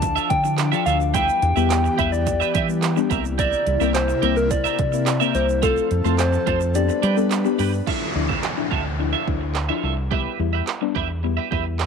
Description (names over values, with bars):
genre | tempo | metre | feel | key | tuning
dance-pop | 107 BPM | 4/4 | straight | D dorian | A4 = 440 Hz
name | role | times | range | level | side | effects
soft struck synth lead | melody | 0.0-7.6 s | A4 to A5 | -23 LUFS | left 2 dB | chorus, tape echo
deep mellow chord stab | accompaniment | 0.0-11.8 s | F3 to A4 | -26 LUFS | left 16 dB | chorus, sidechain pumping
airy breathy pad | sustained chords | 0.0-7.9 s | C3 to B4 | -28 LUFS | equal | chorus, tremolo, sidechain pumping
twelve-string electric guitar | riff | 0.0-11.7 s | D4 to E5 | -26 LUFS | right 15 dB | lush chorus
fingered electric bass | bass | 0.0-11.9 s | C2 to G3 | -23 LUFS | equal | sidechain pumping
deep house drum kit | drums | 0.0-11.9 s | crash cymbal, handclaps, hi-hat, kick drum, snare drum | -27 LUFS | right 5 dB | none
tube shaker | percussion | 0.0-7.9 s | none | -41 LUFS | right 22 dB | none
downlifter | sound effects | 7.9-11.9 s | none | -31 LUFS | equal | none
room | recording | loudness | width
moderate spring reverb, RT60 2.3 s | 1960s-style stereo with parts hard left and right | -18 LUFS | side -6 dB against mid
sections
0.0-7.9 A section; 7.9-11.9 B section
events
kick muted 6.8-7.9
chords
0.0 Dmadd9; 1.1 Em; 3.1 C7; 5.6 F; 6.8 G; 7.9 Dmadd9; 10.1 Em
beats
0.02 0.58 | 1.14 1.71 2.27 2.83 | 3.39 3.95 4.51 5.07 | 5.63 6.19 6.75 7.31 | 7.87 8.43 8.99 9.55 | 10.12 10.68 11.24 11.80